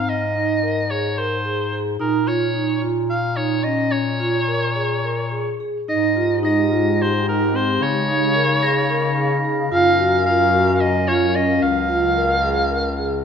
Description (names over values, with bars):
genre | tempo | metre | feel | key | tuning
contemporary instrumental, chamber music in an uneven meter | 219 BPM (eighths) | 7/8 | straight | Ab major | A4 = 440 Hz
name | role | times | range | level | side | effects
breathy soprano saxophone | melody | 0.0-13.2 s | Bb4 to F5 | -21 LUFS | equal | none
vibraphone with medium mallets | arpeggios | 0.0-13.1 s | C4 to Bb4 | -21 LUFS | right 2 dB | none
clear bass clarinet | bass | 0.0-13.2 s | Db2 to Db3 | -24 LUFS | left 3 dB | none
warbly tape-like pad | sustained chords | 5.9-13.2 s | Db3 to F5 | -25 LUFS | left 1 dB | chorus, built-in reverb, phaser
crotales | texture | 6.4-9.9 s | Bb6 | -31 LUFS | left 1 dB | none
room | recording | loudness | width
wet recital hall reverb, RT60 1.4 s | none | -17 LUFS | side -7 dB against mid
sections
0.0-5.9 A section; 5.9-13.2 B section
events
none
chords
0.0 Ab; 2.0 Bbm; 5.9 Abmaj7; 7.8 Db; 9.7 Gbmaj7; 11.6 Db